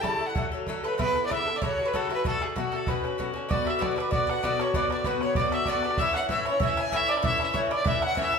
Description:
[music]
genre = celtic folk, Celtic reel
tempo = 192 BPM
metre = 4/4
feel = swing 53% on 8ths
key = B minor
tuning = A4 = 443 Hz
[part]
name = rich fiddle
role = melody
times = 0.0-8.4 s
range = F#4 to A5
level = -28 LUFS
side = equal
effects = none
[part]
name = accordion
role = second line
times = 0.0-8.4 s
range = F#4 to A5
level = -35 LUFS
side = left 2 dB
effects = none
[part]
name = bowl-back mandolin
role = second line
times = 0.0-8.4 s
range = F#4 to A5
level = -32 LUFS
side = right 5 dB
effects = none
[part]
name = Irish bouzouki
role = accompaniment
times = 0.0-8.4 s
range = A2 to A4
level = -29 LUFS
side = left 4 dB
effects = none
[part]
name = bodhran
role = percussion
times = 0.0-8.4 s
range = none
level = -32 LUFS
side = right 2 dB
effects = none
[sound]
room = wet large studio reverb, RT60 0.9 s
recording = band playing live in one room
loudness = -24 LUFS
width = side -5 dB against mid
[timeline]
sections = 0.0-3.5 A section; 3.5-8.4 B section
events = none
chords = 0.4 D; 1.0 Aadd9; 1.6 F#m; 2.2 Bm7; 2.9 Bmadd9; 3.5 Bm; 6.0 A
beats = 0.05 0.36 0.68 | 0.99 1.31 1.62 1.94 | 2.25 2.56 2.88 3.19 | 3.50 3.81 4.12 4.44 | 4.75 5.06 5.37 5.68 | 5.99 6.30 6.62 6.93 | 7.24 7.55 7.86 8.18

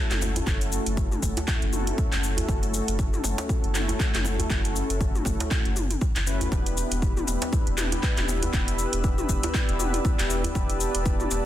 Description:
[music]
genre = afro house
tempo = 119 BPM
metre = 4/4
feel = swing 57% on 16ths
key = unclear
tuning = A4 = 440 Hz
[part]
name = mellow synth brass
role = stabs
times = 0.0-11.5 s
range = A3 to B4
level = -30 LUFS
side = left 1 dB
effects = chorus, sidechain pumping, digital delay
[part]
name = warm sub bass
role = bass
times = 0.1-11.4 s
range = E1 to F#1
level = -29 LUFS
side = equal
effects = sidechain pumping
[part]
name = house drum kit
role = drums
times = 0.1-11.4 s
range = handclaps, hi-hat, shaker, toms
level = -30 LUFS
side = left 1 dB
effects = studio reverb
[part]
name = djembe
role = percussion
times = 0.2-11.4 s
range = none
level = -34 LUFS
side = right 1 dB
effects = none
[part]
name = electronic kick drum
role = drums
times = 0.5-11.2 s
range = none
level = -26 LUFS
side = equal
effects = studio reverb
[part]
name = warm analog pad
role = sustained chords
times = 6.5-11.5 s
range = G4 to E6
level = -33 LUFS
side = equal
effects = chorus, sidechain pumping
[sound]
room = little or no reverb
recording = dense, heavily limited modern master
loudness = -23 LUFS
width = side -12 dB against mid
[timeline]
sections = 0.0-11.5 A section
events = none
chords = 0.0 F#m7; 6.5 Em7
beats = | 0.47 0.97 1.48 1.98 | 2.49 2.99 3.50 4.00 | 4.50 5.01 5.51 6.02 | 6.52 7.02 7.53 8.03 | 8.54 9.04 9.54 10.05 | 10.55 11.06

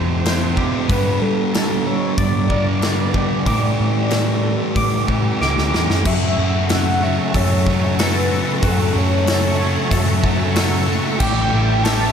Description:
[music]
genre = rock, shoegaze and dream pop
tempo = 93 BPM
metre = 4/4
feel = straight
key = unclear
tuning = A4 = 440 Hz
[part]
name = warm velvety synth lead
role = melody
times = 0.0-12.1 s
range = A4 to A5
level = -25 LUFS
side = left 2 dB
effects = chorus, tape echo
[part]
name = twangy electric guitar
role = arpeggios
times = 0.0-12.1 s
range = F#4 to D6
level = -28 LUFS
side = right 1 dB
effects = analog chorus, tape echo
[part]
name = crunchy overdriven guitar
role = riff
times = 0.0-12.1 s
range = F2 to G4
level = -23 LUFS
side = right 8 dB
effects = reverse reverb
[part]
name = thick fuzz guitar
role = riff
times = 0.0-12.1 s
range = F2 to A3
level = -23 LUFS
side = left 9 dB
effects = distortion, wide subtle chorus
[part]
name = hollow-body short-scale picked electric bass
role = bass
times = 0.0-12.1 s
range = A1 to G3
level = -21 LUFS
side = equal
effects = none
[part]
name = big rock drum kit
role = drums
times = 0.3-12.0 s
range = crash cymbal, hi-hat, kick drum, snare drum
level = -22 LUFS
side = equal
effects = none
[part]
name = string machine, full ensemble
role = sustained chords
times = 6.0-12.1 s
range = A4 to C#6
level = -27 LUFS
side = right 1 dB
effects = phaser, ensemble chorus
[sound]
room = moderate lush hall reverb, RT60 2.6 s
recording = dreamy mix soaked in reverb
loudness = -15 LUFS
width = side -7 dB against mid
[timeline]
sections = 0.0-6.1 A section; 6.1-12.1 B section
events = drum fill 5.4-6.1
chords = 0.0 F; 0.9 Gadd9; 3.5 A7sus4; 6.1 F#m7; 11.2 A7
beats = 0.25 | 0.90 1.54 2.19 2.83 | 3.48 4.12 4.77 5.41 | 6.06 6.70 7.34 7.99 | 8.63 9.28 9.92 10.56 | 11.21 11.85

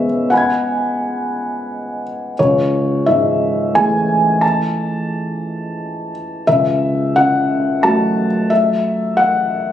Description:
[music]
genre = neoclassical minimalist piano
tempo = 88 BPM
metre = 3/4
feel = rubato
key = F# minor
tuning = A4 = 440 Hz
[part]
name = felt-muted upright piano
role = solo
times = 0.0-9.7 s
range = C#2 to G#6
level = -14 LUFS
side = left 1 dB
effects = none
[sound]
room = light reverb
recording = recorded on a phone in the room, club reverb, compression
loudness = -14 LUFS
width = side -10 dB against mid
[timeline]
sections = 0.0-9.7 A section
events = none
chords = 0.0 C#7sus4; 2.4 Amaj7/C#; 6.5 F#m7/C#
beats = | 0.31 0.99 1.69 | 2.37 3.06 3.74 | 4.42 5.10 5.78 | 6.46 7.14 7.82 | 8.50 9.19

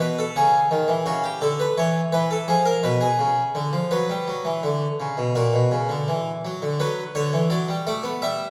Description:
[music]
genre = classical, baroque-style two-part invention for harpsichord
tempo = 84 BPM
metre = 4/4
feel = straight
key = B minor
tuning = A4 = 440 Hz
[part]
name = harpsichord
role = solo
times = 0.0-8.4 s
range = A#2 to E5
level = -23 LUFS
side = equal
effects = none
[sound]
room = wet recital hall reverb, RT60 1.8 s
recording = recorded in a church or concert hall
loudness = -23 LUFS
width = mono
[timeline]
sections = 0.0-6.8 A section; 6.8-8.5 B section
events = none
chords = 0.0 C#m; 1.1 C#dim; 2.5 Fdim7; 3.9 Bm; 5.4 F#5; 6.8 Bm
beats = 0.36 | 1.07 1.77 2.48 3.19 | 3.91 4.63 5.36 6.08 | 6.80 7.51 8.23

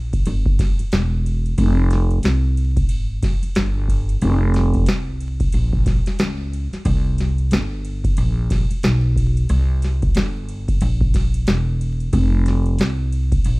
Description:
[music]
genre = hip hop, jazz-hop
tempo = 91 BPM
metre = 4/4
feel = swing 60% on 16ths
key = unclear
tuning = A4 = 440 Hz
[part]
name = upright bass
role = bass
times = 0.0-13.6 s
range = E1 to Db2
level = -19 LUFS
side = equal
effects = none
[part]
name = booming analog drum machine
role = drums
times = 0.1-13.6 s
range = hi-hat, kick drum, ride cymbal, snare drum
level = -20 LUFS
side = equal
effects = none
[sound]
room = little or no reverb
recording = dry, close 1970s-style studio recording, vinyl crackle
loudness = -17 LUFS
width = side -24 dB against mid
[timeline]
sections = 0.0-13.6 A section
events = none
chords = none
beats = 0.26 0.92 | 1.58 2.24 2.90 3.56 | 4.22 4.88 5.54 6.20 | 6.85 7.51 8.17 8.83 | 9.49 10.15 10.81 11.47 | 12.13 12.79 13.45

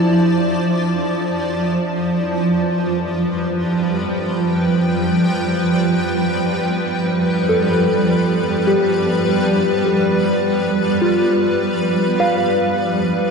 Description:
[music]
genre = ambient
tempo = 51 BPM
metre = 3/4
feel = straight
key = unclear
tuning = A4 = 440 Hz
[part]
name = granular cloud pad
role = sustained chords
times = 0.0-13.3 s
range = F3 to A5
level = -16 LUFS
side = right 1 dB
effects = built-in reverb
[part]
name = soft synth bell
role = arpeggios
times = 0.0-13.3 s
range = E4 to F5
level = -21 LUFS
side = left 1 dB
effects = chorus, tape echo
[sound]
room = wet lush hall reverb, RT60 2.4 s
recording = cassette tape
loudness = -15 LUFS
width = side -5 dB against mid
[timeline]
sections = 0.0-13.3 A section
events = none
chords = 0.0 Fmaj7; 1.6 G7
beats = 0.43 | 1.60 2.78 3.96 | 5.13 6.31 7.49 | 8.66 9.84 11.01 | 12.19

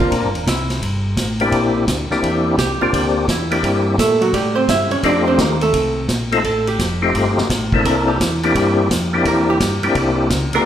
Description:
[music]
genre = soul jazz organ trio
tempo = 171 BPM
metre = 4/4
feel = swing 65% on 8ths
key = C mixolydian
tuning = A4 = 440 Hz
[part]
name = percussive tonewheel organ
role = melody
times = 0.0-10.7 s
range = A3 to Bb4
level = -18 LUFS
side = left 2 dB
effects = slow rotary speaker, overdrive, chorus vibrato
[part]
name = archtop guitar, miked and amplified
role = accompaniment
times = 0.0-10.7 s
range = F#3 to E5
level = -19 LUFS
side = right 3 dB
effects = none
[part]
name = tonewheel organ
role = bass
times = 0.0-10.6 s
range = E1 to Bb2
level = -21 LUFS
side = equal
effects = chorus vibrato, slow rotary speaker
[part]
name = vintage drum kit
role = drums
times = 0.0-10.6 s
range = hi-hat, kick drum, ride cymbal, snare drum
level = -22 LUFS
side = equal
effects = none
[sound]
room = wet recital hall reverb, RT60 1.5 s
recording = recorded in a church or concert hall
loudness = -15 LUFS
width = side -10 dB against mid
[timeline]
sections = 0.0-10.7 A section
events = hollow-body jazz guitar solo 0.0-10.7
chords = 0.0 C9; 5.0 F9; 7.8 C9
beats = 0.12 0.47 | 0.82 1.17 1.52 1.87 | 2.22 2.58 2.93 3.28 | 3.63 3.98 4.33 4.68 | 5.04 5.39 5.74 6.09 | 6.44 6.79 7.14 7.50 | 7.85 8.20 8.55 8.90 | 9.25 9.61 9.96 10.31

